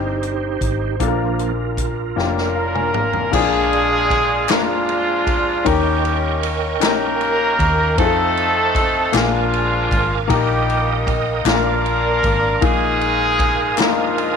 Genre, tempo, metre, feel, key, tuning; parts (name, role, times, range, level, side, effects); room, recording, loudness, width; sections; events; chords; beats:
slow gospel; 52 BPM (dotted quarters); 6/8; straight; A4 = 440 Hz
bright upright piano; accompaniment; 0.0-14.4 s; Bb2 to Bb5; -22 LUFS; left 12 dB
bright tonewheel organ; sustained chords; 0.0-14.4 s; F3 to Eb6; -25 LUFS; right 10 dB; chorus vibrato, fast rotary speaker
hollow-body short-scale fingered electric bass; bass; 0.0-14.4 s; F1 to F2; -24 LUFS; equal
swinging big-band drum kit; drums; 0.2-14.4 s; crash cymbal, hi-hat, kick drum, ride cymbal, snare drum, toms; -24 LUFS; equal
clear horn section; melody; 2.2-14.4 s; F3 to Bb4; -18 LUFS; equal
group handclap; percussion; 4.5-14.1 s; -26 LUFS; left 16 dB
light reverb, small room reverb; 1960s-style stereo with parts hard left and right; -15 LUFS; side -6 dB against mid
0.0-3.3 A section; 3.3-14.4 B section
tonewheel organ solo 0.0-3.3; drum fill 2.2-3.3; upright piano fill 2.2-3.3
0.0 Cm; 1.0 Bb; 3.3 Bb7; 5.7 Eb7; 8.0 F7; 9.1 Bb7; 10.3 Eb/Bb; 11.5 Bb; 12.6 Bb7sus4
| 1.00 2.17 | 3.33 4.50 | 5.66 6.82 | 7.99 9.15 | 10.31 11.47 | 12.63 13.78